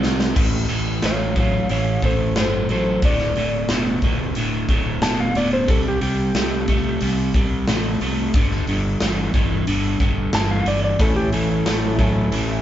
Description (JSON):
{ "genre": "classic rock", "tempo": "90 BPM", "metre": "4/4", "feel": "straight", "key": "unclear", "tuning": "A4 = 440 Hz", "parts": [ { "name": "tonewheel organ", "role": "sustained chords", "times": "0.0-0.4, 11.0-12.6 s", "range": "C4 to G5", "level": "-36 LUFS", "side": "equal", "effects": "none" }, { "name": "crunchy overdriven guitar", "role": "riff", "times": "0.0-12.6 s", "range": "D2 to C4", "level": "-22 LUFS", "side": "right 1 dB", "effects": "none" }, { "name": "growling fingered electric bass", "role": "bass", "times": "0.0-12.6 s", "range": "D1 to C2", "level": "-26 LUFS", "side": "equal", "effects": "overdrive" }, { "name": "big rock drum kit", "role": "drums", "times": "0.0-12.5 s", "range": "crash cymbal, hi-hat, kick drum, snare drum", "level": "-22 LUFS", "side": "equal", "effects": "none" }, { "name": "clean lap steel guitar", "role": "melody", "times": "1.1-12.6 s", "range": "G4 to A5", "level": "-24 LUFS", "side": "left 1 dB", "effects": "none" }, { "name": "fingerpicked twelve-string acoustic guitar", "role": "accompaniment", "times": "11.0-12.6 s", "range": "A2 to A4", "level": "-27 LUFS", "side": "left 1 dB", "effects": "none" } ], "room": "moderate stone room reverb, RT60 1.0 s", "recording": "band playing live in one room, nothing above 7.7 kHz", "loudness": "-17 LUFS", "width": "side -11 dB against mid", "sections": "0.4-12.6 A section", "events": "drum fill 0.0-0.4; electric slide guitar solo 0.4-12.6", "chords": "0.4 A; 3.0 D5; 5.7 C5; 8.3 G5; 11.0 A" }